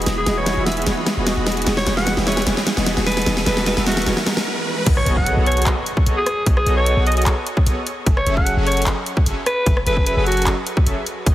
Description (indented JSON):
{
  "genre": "future bass",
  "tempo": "150 BPM",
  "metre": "4/4",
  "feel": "half-time",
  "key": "E major",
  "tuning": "A4 = 440 Hz",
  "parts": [
    { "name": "growling alto saxophone", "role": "melody", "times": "0.0-10.6 s", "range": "F#4 to F#5", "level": "-23 LUFS", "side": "equal", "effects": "sidechain pumping, tape echo" },
    { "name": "glassy digital keys", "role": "accompaniment", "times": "0.0-4.9 s", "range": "E3 to G#4", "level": "-29 LUFS", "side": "right 3 dB", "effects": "none" },
    { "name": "clear studio string section", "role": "sustained chords", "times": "0.0-4.4 s", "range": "G#4 to B5", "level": "-34 LUFS", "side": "left 3 dB", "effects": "vintage 12-bit sampler grit, sidechain pumping" },
    { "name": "soft supersaw", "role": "riff", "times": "0.0-11.3 s", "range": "E3 to F#5", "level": "-25 LUFS", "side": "equal", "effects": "sidechain pumping, low-pass filter, tape echo" },
    { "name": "warm 808-style bass", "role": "bass", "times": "0.0-11.3 s", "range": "E1 to B1", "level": "-22 LUFS", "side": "equal", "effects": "sidechain pumping" },
    { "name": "dubstep drum kit", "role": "drums", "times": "0.0-11.3 s", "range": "crash cymbal, handclaps, hi-hat, rim click, snare drum", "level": "-22 LUFS", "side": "equal", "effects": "studio reverb" },
    { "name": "riser and impact", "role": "sound effects", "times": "0.0-6.5 s", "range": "none", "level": "-28 LUFS", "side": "right 1 dB", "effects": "none" },
    { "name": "electronic kick drum", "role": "drums", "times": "4.9-11.3 s", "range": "none", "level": "-16 LUFS", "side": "equal", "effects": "studio reverb" }
  ],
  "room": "moderate huge ambient reverb, RT60 5.1 s",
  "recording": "heavily compressed radio sound",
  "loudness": "-16 LUFS",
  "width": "side -14 dB against mid",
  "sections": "0.0-4.9 A section; 4.9-11.3 B section",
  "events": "build-up 0.0-4.9; drum fill 0.0-4.5; riser 0.0-4.9; filter sweep on supersaw synth 0.0-4.9; stop 4.5-4.9; drop 4.9-11.3; impact 4.9-6.5",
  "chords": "0.0 Emaj7; 4.9 B13; 7.9 F#m7",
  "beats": "| 0.07 0.47 0.87 1.27 | 1.67 2.07 2.47 2.87 | 3.27 3.67 4.07 4.47 | 4.87 5.27 5.67 6.07 | 6.47 6.87 7.27 7.67 | 8.07 8.47 8.87 9.27 | 9.67 10.07 10.47 10.87 | 11.27"
}